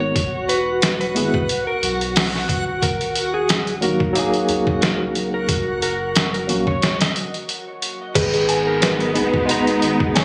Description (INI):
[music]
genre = trip hop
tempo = 90 BPM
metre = 4/4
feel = swing 55% on 16ths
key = G# minor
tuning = A4 = 440 Hz
[part]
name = electric slide guitar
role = melody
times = 0.0-10.2 s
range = G#4 to D#5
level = -28 LUFS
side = equal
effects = tape echo
[part]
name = barky tine electric piano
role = accompaniment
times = 0.0-10.2 s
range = F#3 to A#5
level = -24 LUFS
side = equal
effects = tremolo, tape echo
[part]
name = soft dub sub bass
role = bass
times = 0.0-10.2 s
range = D#1 to C#2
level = -33 LUFS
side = equal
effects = none
[part]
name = backwards swelling texture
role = texture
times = 0.0-8.2 s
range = F#4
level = -30 LUFS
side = equal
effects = built-in reverb
[part]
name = trip hop sampler-style drum kit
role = drums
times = 0.2-10.2 s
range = crash cymbal, hi-hat, kick drum, snare drum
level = -23 LUFS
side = equal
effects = none
[part]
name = clear symphonic string section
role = sustained chords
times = 8.1-10.2 s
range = G#3 to D#4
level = -26 LUFS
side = equal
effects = none
[part]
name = music box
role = arpeggios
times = 8.2-10.2 s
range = F#4 to G#5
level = -24 LUFS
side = equal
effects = delay
[sound]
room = light reverb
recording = recorded on a phone in the room, club reverb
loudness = -20 LUFS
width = mono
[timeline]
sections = 0.0-8.2 A section; 8.2-10.2 B section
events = break 6.8-8.2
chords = 0.2 E; 2.8 D#m; 5.5 F#; 6.8 N.C.; 8.2 G#m